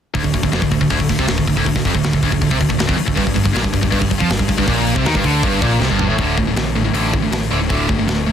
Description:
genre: heavy metal.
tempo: 159 BPM.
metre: 4/4.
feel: straight.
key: D minor.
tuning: A4 = 440 Hz.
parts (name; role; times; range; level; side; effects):
high-gain distorted guitar; riff; 0.1-8.3 s; D2 to F3; -20 LUFS; left 8 dB; distortion.
sludgy distorted guitar; riff; 0.1-8.3 s; D2 to F3; -21 LUFS; right 9 dB; overdrive.
picked electric bass; bass; 0.1-8.3 s; D1 to F2; -22 LUFS; equal; none.
tight metal drum kit; drums; 0.1-8.2 s; hi-hat, kick drum, snare drum, toms; -21 LUFS; equal; none.
sludgy distorted guitar; riff; 0.2-6.2 s; D2 to F3; -22 LUFS; right 1 dB; none.
room: small room ambience.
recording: dense, heavily limited modern master.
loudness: -14 LUFS.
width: side -8 dB against mid.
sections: 0.1-6.2 A section; 6.2-8.3 B section.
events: drum fill 5.8-6.2.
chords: 0.1 Dm; 3.2 G5; 6.2 D5.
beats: | 0.15 0.53 0.90 1.28 | 1.66 2.04 2.41 2.79 | 3.17 3.54 3.92 4.30 | 4.68 5.05 5.43 5.81 | 6.19 6.56 6.94 7.32 | 7.70 8.07.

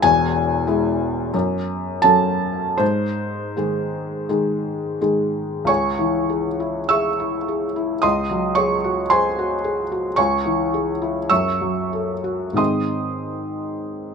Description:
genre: classical, romantic nocturne for solo piano.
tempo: 38-57 BPM.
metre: 4/4.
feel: rubato.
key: C# minor.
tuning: A4 = 438 Hz.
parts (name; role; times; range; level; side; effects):
felt-muted upright piano; solo; 0.0-14.1 s; E1 to E6; -18 LUFS; equal; none.
room: light reverb.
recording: minimal, uncompressed stereo recording.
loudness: -19 LUFS.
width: side -6 dB against mid.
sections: 0.0-5.7 A section; 5.7-14.1 B section.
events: none.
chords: 0.0 E; 1.3 F#m; 2.8 G#; 5.7 C#m; 8.0 G#7/C#; 10.2 C#m; 11.3 F#m; 12.6 G#.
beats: | 0.04 1.33 2.80 4.29 | 5.68 6.90 8.04 9.12 | 10.18 11.30 12.59 13.91.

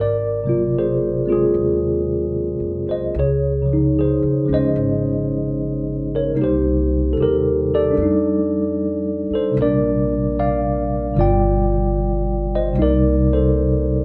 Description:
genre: jazz ballad.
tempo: 75 BPM.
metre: 4/4.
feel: swing 66% on 8ths.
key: unclear.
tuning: A4 = 440 Hz.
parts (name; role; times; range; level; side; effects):
tine electric piano; accompaniment; 0.0-14.0 s; B2 to G5; -20 LUFS; equal; none.
upright bass; bass; 0.0-14.0 s; G1 to F2; -27 LUFS; equal; none.
room: wet small room ambience, RT60 0.5 s.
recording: band playing live in one room.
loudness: -19 LUFS.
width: mono.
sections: 0.0-14.0 A section.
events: none.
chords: 0.0 Ab13; 3.1 Dbmaj9; 6.4 Cm7; 8.0 F13; 9.6 Bb69; 11.2 G7; 12.8 Cm7.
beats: 0.73 1.53 2.34 | 3.14 3.94 4.75 5.55 | 6.35 7.16 7.96 8.76 | 9.56 10.36 11.16 11.96 | 12.77 13.57.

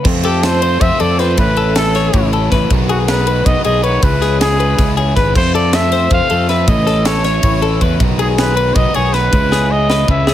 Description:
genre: math rock and midwest emo.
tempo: 317 BPM (eighths).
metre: 7/8.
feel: straight.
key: unclear.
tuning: A4 = 440 Hz.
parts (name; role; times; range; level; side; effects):
twelve-string electric guitar; arpeggios; 0.0-10.3 s; G#4 to C#5; -20 LUFS; left 8 dB; plate reverb.
raw garage guitar; riff; 0.0-10.3 s; A2 to F4; -21 LUFS; right 2 dB; overdrive.
crisp fusion drum kit; drums; 0.0-10.3 s; crash cymbal, kick drum, ride cymbal, snare drum; -17 LUFS; equal; none.
fuzz fingered electric bass; bass; 0.1-10.3 s; G#1 to F2; -16 LUFS; equal; overdrive.
breathy trumpet; melody; 0.2-10.3 s; F#4 to F5; -17 LUFS; right 1 dB; slapback echo, plate reverb.
room: light reverb.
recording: none.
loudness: -11 LUFS.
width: side -11 dB against mid.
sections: 0.1-10.3 A section.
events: drum fill 9.5-10.3.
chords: 0.1 F; 1.4 A; 2.7 G#m/B; 4.0 C#m7; 5.4 Fmaj7; 6.7 A; 8.0 G#m/B; 9.3 C#m7.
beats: | 0.06 0.24 0.43 0.62 0.81 1.00 1.19 | 1.38 1.57 1.76 1.95 2.14 2.33 2.51 | 2.70 2.89 3.08 3.27 3.46 3.65 3.84 | 4.03 4.22 4.41 4.60 4.79 4.97 5.16 | 5.35 5.54 5.73 5.92 6.11 6.30 6.49 | 6.68 6.87 7.05 7.24 7.43 7.62 7.81 | 8.00 8.19 8.38 8.57 8.76 8.94 9.13 | 9.32 9.51 9.70 9.89 10.08 10.27.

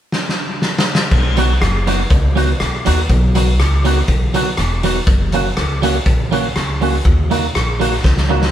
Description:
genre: ska.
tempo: 121 BPM.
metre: 4/4.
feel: straight.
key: B major.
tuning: A4 = 442 Hz.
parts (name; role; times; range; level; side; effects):
raw garage drum kit; drums; 0.1-8.5 s; crash cymbal, hi-hat, kick drum, rim click, snare drum; -17 LUFS; equal; dub echo.
upright bass; bass; 1.1-8.5 s; E1 to D#2; -17 LUFS; equal; none.
clean electric guitar; accompaniment; 1.4-8.4 s; F#3 to F#4; -19 LUFS; right 3 dB; none.
room: moderate stone room reverb, RT60 1.1 s.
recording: band playing live in one room.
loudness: -13 LUFS.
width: side -11 dB against mid.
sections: 0.0-1.1 A section; 1.1-8.5 B section.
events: drum fill 0.1-1.1, 8.0-8.5.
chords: 0.0 N.C.; 1.1 B; 5.1 F#; 7.1 D#m.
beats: 0.12 0.62 | 1.11 1.61 2.10 2.60 | 3.10 3.59 4.08 4.58 | 5.08 5.57 6.07 6.56 | 7.05 7.55 8.05.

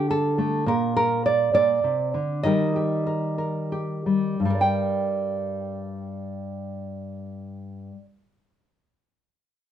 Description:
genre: folk, solo fingerstyle acoustic guitar.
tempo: 56-70 BPM (dotted quarters).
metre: 6/8.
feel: rubato.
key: G minor.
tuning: A4 = 441 Hz.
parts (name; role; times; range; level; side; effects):
nylon-string guitar; solo; 0.0-8.0 s; G2 to G5; -22 LUFS; right 1 dB; none.
room: light reverb.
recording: worn, warbling old tape, cassette tape, warbly pitch drift.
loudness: -21 LUFS.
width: side -10 dB against mid.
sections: 0.0-4.4 A section; 4.4-8.5 B section.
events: slowing down 0.7-4.4.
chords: 0.0 Dm; 0.7 Bb; 2.4 Eb; 4.4 Gm.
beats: | 0.67 1.54 | 2.44 3.38 | 4.41 5.46 | 6.48 7.50.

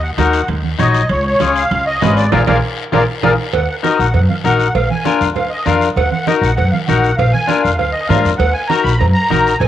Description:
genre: latin, cumbia.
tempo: 197 BPM.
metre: 4/4.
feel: straight.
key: Eb harmonic minor from 3.5 s.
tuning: A4 = 440 Hz.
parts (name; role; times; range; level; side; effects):
musette accordion; melody; 0.0-9.7 s; Bb4 to Cb6; -18 LUFS; equal; none.
upright bass; bass; 0.0-9.7 s; Ab1 to Ab2; -16 LUFS; equal; none.
clean electric guitar; accompaniment; 0.2-9.5 s; Db4 to Db5; -17 LUFS; left 6 dB; cassette tape.
congas; percussion; 0.2-9.7 s; none; -22 LUFS; right 9 dB; none.
guiro; percussion; 0.2-9.7 s; none; -30 LUFS; left 9 dB; none.
timbales and cowbell; percussion; 0.2-9.7 s; none; -23 LUFS; right 9 dB; none.
room: moderate spring reverb, RT60 2.5 s.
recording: home recording on cassette.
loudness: -12 LUFS.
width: side -11 dB against mid.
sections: 0.0-3.5 A section; 3.5-9.7 B section.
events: band accent 2.3-3.5; drum fill 3.1-3.5.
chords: 0.0 Ebm; 1.1 Db; 2.3 Bb7; 3.5 Ebm; 4.8 Bb7; 6.0 Ebm; 7.2 Bb7; 8.4 Ebm.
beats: 0.19 0.49 0.80 | 1.10 1.41 1.71 2.02 | 2.32 2.62 2.93 3.23 | 3.54 3.84 4.15 4.45 | 4.75 5.06 5.36 5.67 | 5.97 6.28 6.58 6.88 | 7.19 7.49 7.80 8.10 | 8.40 8.71 9.01 9.31 | 9.62.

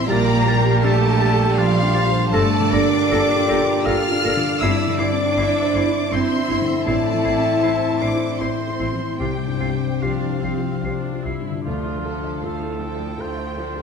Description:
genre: cinematic.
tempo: 73-82 BPM.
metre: 3/4.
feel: rubato.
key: D minor.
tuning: A4 = 440 Hz.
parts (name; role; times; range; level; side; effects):
rich studio violin section; melody; 0.0-13.8 s; F5 to F6; -27 LUFS; left 2 dB; none.
rich studio violin section; second line; 0.0-13.8 s; D4 to E5; -32 LUFS; left 3 dB; none.
felt-muted upright piano; accompaniment; 0.0-13.8 s; C2 to F5; -27 LUFS; equal; none.
rich studio viola section; accompaniment; 0.0-13.8 s; D3 to A4; -30 LUFS; right 2 dB; none.
mellow French horn section; sustained chords; 0.0-11.3 s; Bb2 to G4; -25 LUFS; left 1 dB; none.
concert harp; arpeggios; 0.0-13.8 s; G2 to D5; -27 LUFS; left 9 dB; none.
rich studio cello section; bass; 0.0-13.8 s; D2 to F4; -26 LUFS; right 4 dB; none.
rich studio double bass section; bass; 0.0-11.3 s; G1 to C2; -25 LUFS; right 4 dB; none.
clear clarinet; second line; 0.1-11.4 s; E4 to A4; -31 LUFS; left 2 dB; none.
hollow concert flute; second line; 0.1-11.3 s; A6 to C7; -33 LUFS; left 1 dB; none.
warm cor anglais; second line; 0.1-13.8 s; F4 to F5; -27 LUFS; right 1 dB; none.
room: wet scoring stage reverb, RT60 1.7 s.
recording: none.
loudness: -17 LUFS.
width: side -6 dB against mid.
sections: 0.0-11.7 A section; 11.7-13.8 B section.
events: none.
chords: 0.1 Gmadd9/Bb; 2.3 Gmadd9; 4.6 Cadd9/G; 6.9 Am; 9.2 Csus4; 11.7 Dm.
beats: | 0.09 0.84 1.58 | 2.34 3.12 3.87 | 4.62 5.37 6.12 | 6.87 7.62 8.40 | 9.20 10.02 10.84 | 11.66 12.43 13.19.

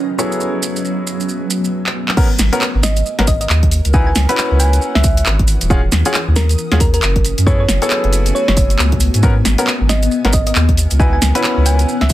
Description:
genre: UK garage, two-step garage.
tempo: 136 BPM.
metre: 4/4.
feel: swing 61% on 16ths.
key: G# phrygian.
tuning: A4 = 441 Hz.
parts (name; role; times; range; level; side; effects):
bright grand piano; stabs; 0.0-12.1 s; D#3 to C#5; -21 LUFS; left 1 dB; low-pass filter, digital delay.
granular cloud pad; texture; 0.0-12.1 s; E3 to D#6; -23 LUFS; left 1 dB; built-in reverb, sidechain pumping.
maracas; percussion; 0.2-12.1 s; none; -24 LUFS; right 4 dB; none.
house drum kit; drums; 1.9-12.1 s; crash cymbal, handclaps, hi-hat, snare drum; -18 LUFS; equal; none.
electronic kick drum; drums; 2.2-12.1 s; none; -15 LUFS; equal; none.
soft dub sub bass; bass; 2.4-12.1 s; D#1 to G#2; -14 LUFS; equal; none.
thumb-piano-like synth pluck; melody; 2.8-12.1 s; A#4 to B5; -22 LUFS; equal; chorus, digital delay.
room: moderate studio reverb, RT60 0.6 s.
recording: dense, heavily limited modern master.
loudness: -12 LUFS.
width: side -14 dB against mid.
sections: 0.0-2.2 A section; 2.2-12.1 B section.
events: drum fill 1.8-2.2; drop 2.2-12.1.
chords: 0.2 F#m11; 2.2 G#m11; 3.9 C#m11; 5.7 D#m11; 7.2 F#m11; 9.2 G#m11; 11.0 C#m11.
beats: | 0.41 0.85 1.29 1.73 | 2.17 2.61 3.05 3.50 | 3.94 4.38 4.82 5.26 | 5.70 6.14 6.58 7.03 | 7.47 7.91 8.35 8.79 | 9.23 9.67 10.11 10.55 | 10.99 11.44 11.88.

